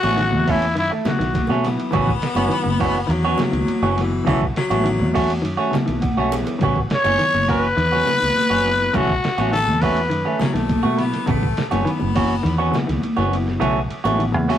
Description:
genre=afrobeat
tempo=103 BPM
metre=4/4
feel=straight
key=B mixolydian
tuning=A4 = 440 Hz
part: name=growling trumpet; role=melody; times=0.0-1.6, 6.9-10.4 s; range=E4 to C#5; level=-19 LUFS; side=left 2 dB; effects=none
part: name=mellow reed electric piano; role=accompaniment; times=0.0-14.6 s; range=F#3 to A5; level=-29 LUFS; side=left 1 dB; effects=none
part: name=semi-hollow electric guitar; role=stabs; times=0.0-14.6 s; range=E3 to F#4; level=-23 LUFS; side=right 3 dB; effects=none
part: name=fingered electric bass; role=bass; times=0.0-14.6 s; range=F#1 to B2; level=-24 LUFS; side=equal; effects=none
part: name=lo-fi sampler-style drum kit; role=drums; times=0.0-14.6 s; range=hi-hat, kick drum, ride cymbal, snare drum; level=-27 LUFS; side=right 1 dB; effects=none
part: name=congas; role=percussion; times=0.0-14.6 s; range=none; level=-27 LUFS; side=equal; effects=none
part: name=semi-hollow electric guitar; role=arpeggios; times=0.2-14.6 s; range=C#3 to D#3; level=-28 LUFS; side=left 2 dB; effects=tape echo
part: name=clear baritone saxophone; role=second line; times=1.6-5.7, 10.4-13.0 s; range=E3 to B3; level=-26 LUFS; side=left 4 dB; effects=none
room=light reverb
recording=rough rehearsal-room recording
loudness=-17 LUFS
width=side -10 dB against mid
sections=0.0-14.6 A section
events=reed electric piano fill 5.4-6.6; drum fill 6.0-6.6; kick and snare drop out 13.6-14.6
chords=0.0 B9sus4; 1.9 A69; 4.3 B9sus4; 6.6 A69; 8.9 B9sus4; 11.3 A69; 13.6 B9sus4

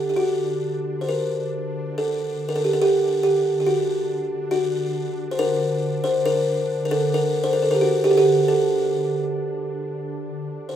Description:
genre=caucasian folk, Caucasian lament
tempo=68 BPM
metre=3/4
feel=uneven beats, rubato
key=unclear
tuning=A4 = 440 Hz
part: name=buzzing kalimba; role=melody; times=0.0-10.8 s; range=F#4 to C5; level=-20 LUFS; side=equal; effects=none
part: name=ethereal airy pad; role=drone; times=0.0-10.8 s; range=D3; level=-30 LUFS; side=right 1 dB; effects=ensemble chorus, built-in reverb
room=moderate studio reverb, RT60 0.6 s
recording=rough home demo mix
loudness=-19 LUFS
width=side -10 dB against mid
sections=0.2-10.8 A section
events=none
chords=none

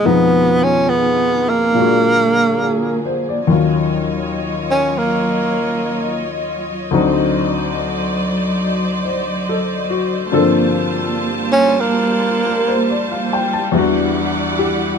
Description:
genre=jazz ballad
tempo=70 BPM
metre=4/4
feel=swing 68% on 8ths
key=unclear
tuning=A4 = 440 Hz
part: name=breathy tenor saxophone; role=melody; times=0.0-6.3, 11.5-13.1 s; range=Bb3 to Db4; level=-15 LUFS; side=right 2 dB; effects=none
part: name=warm baby grand piano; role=accompaniment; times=0.0-15.0 s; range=D2 to A5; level=-18 LUFS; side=left 4 dB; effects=none
part: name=clear symphonic string section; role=sustained chords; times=0.0-15.0 s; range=Cb3 to A5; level=-21 LUFS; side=right 1 dB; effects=none
room=light reverb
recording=dark, warm production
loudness=-14 LUFS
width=side -6 dB against mid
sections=0.0-3.5 A section; 3.5-15.0 B section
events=tenor saxophone solo 3.5-15.0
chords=0.0 Fm7b5; 1.7 Bb7b13; 3.5 Ebm9; 6.9 D7b9; 10.3 Gm11; 13.7 Em9

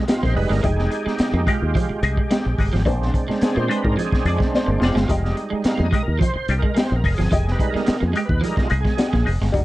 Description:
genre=funk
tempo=108 BPM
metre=4/4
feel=straight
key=F dorian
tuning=A4 = 443 Hz
part: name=clean electric guitar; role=riff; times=0.0-9.5 s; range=F3 to Bb3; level=-27 LUFS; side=right 3 dB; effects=analog chorus
part: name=overdriven tonewheel organ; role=stabs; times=0.0-9.6 s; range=G3 to F5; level=-26 LUFS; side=right 2 dB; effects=chorus vibrato, slow rotary speaker
part: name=clean electric guitar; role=accompaniment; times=0.1-9.6 s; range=Ab3 to D5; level=-27 LUFS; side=left 3 dB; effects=wah, tremolo
part: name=crunchy breakbeat drum kit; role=drums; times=0.1-9.6 s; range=hi-hat, kick drum, snare drum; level=-22 LUFS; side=equal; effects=vintage 12-bit sampler grit
part: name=fingered electric bass with an envelope filter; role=bass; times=0.2-9.6 s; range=F1 to Bb2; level=-21 LUFS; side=equal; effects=none
room=studio reverb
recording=none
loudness=-18 LUFS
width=side -17 dB against mid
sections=0.0-9.6 A section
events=tonewheel organ solo 0.0-9.6; drum fill 4.5-5.1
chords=0.0 Fm9; 2.9 Bb9; 5.1 Fm9

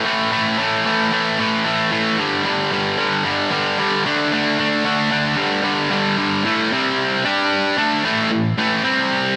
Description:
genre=rock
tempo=113 BPM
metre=4/4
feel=straight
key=unclear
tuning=A4 = 442 Hz
part: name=distorted electric guitar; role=solo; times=0.0-9.4 s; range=G2 to G4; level=-18 LUFS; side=equal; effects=overdrive, digital delay
room=wet plate reverb, RT60 3.5 s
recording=bright 1980s-style digital production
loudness=-18 LUFS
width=mono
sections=0.0-6.4 A section; 6.4-9.4 B section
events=none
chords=0.0 A5; 2.2 G5; 4.1 D5; 5.4 G5; 6.4 A5; 6.7 C5; 7.2 G5; 7.8 A5; 8.8 C5

